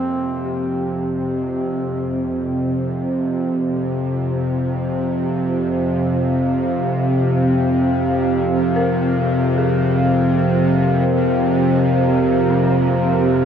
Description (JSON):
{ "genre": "dark ambient drone", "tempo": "free time", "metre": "none", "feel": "none", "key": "F minor", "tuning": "A4 = 440 Hz", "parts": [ { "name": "breathy duduk", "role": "melody", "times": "0.0-1.0 s", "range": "C4", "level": "-32 LUFS", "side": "right 1 dB", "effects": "shimmer reverb, tape echo" }, { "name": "dark detuned synth bell", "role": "arpeggios", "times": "0.0-13.4 s", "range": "C4 to Bb4", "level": "-30 LUFS", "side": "equal", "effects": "none" }, { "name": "bowed-like drone", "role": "drone", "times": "0.0-13.4 s", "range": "F2 to C3", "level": "-18 LUFS", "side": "equal", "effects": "built-in reverb" }, { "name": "deep dark ambient pad", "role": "sustained chords", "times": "4.9-13.4 s", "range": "F3 to F5", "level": "-21 LUFS", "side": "right 1 dB", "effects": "chorus, built-in reverb, shimmer reverb" } ], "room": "wet cathedral reverb, RT60 5.4 s", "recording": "worn, warbling old tape, cassette tape, warbly pitch drift", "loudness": "-16 LUFS", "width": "side -8 dB against mid", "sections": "0.0-1.6 A section; 1.6-13.4 B section", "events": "none", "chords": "0.0 F5" }